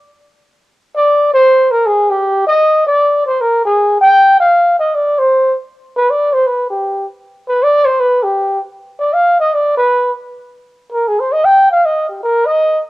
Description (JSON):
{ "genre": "jazz", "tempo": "157 BPM", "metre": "4/4", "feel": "swing 65% on 8ths", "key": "C minor", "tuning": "A4 = 440 Hz", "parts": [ { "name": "breathy trumpet", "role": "solo", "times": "1.0-12.8 s", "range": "G4 to G5", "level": "-10 LUFS", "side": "equal", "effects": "cassette tape" } ], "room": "light reverb, small room ambience", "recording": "home recording on cassette", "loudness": "-10 LUFS", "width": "side -18 dB against mid", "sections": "0.0-12.9 A section", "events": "trumpet solo 0.0-12.9", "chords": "none" }